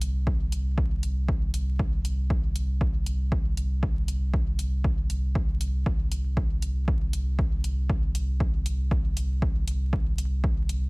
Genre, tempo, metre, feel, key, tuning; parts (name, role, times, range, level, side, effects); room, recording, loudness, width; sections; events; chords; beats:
dub techno; 118 BPM; 4/4; swing 56% on 16ths; A4 = 440 Hz
soft dub sub bass; bass; 0.0-10.9 s; C2; -27 LUFS; equal; sidechain pumping
electronic hi-hat; drums; 0.0-10.8 s; -38 LUFS; equal; studio reverb
electronic kick drum; drums; 0.3-10.6 s; -27 LUFS; equal; studio reverb
little or no reverb; vinyl crackle; -24 LUFS; side -30 dB against mid
0.0-10.9 A section
0.27 0.78 1.29 | 1.79 2.30 2.81 3.32 | 3.83 4.34 4.84 5.35 | 5.86 6.37 6.88 7.39 | 7.90 8.40 8.91 9.42 | 9.93 10.44